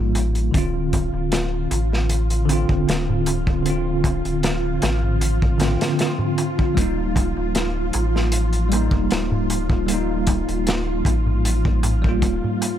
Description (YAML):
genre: trip hop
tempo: 77 BPM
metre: 4/4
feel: straight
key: D phrygian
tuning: A4 = 440 Hz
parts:
  - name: bell-like tine electric piano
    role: accompaniment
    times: 0.0-12.8 s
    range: D3 to F4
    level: -23 LUFS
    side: equal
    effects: fast stereo tremolo, harmonic tremolo, vintage 12-bit sampler grit, tape echo
  - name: warm sub bass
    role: bass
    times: 0.0-12.4 s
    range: D1 to A1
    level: -22 LUFS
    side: equal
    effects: none
  - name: crunchy breakbeat drum kit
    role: drums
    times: 0.1-12.8 s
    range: hi-hat, kick drum, snare drum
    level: -23 LUFS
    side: equal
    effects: none
  - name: darbuka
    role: percussion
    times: 0.2-12.8 s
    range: none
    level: -30 LUFS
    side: right 1 dB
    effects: none
  - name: string machine, cellos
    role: sustained chords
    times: 0.5-12.8 s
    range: F4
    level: -28 LUFS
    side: right 1 dB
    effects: phaser, ensemble chorus
room: small room ambience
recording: none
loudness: -18 LUFS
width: side -10 dB against mid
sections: 0.0-12.8 A section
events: none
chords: 0.0 Eb; 0.5 Dm7; 6.8 Eb/D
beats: | 0.54 1.32 2.10 2.88 | 3.65 4.43 5.21 5.99 | 6.77 7.55 8.33 9.11 | 9.89 10.67 11.45 12.23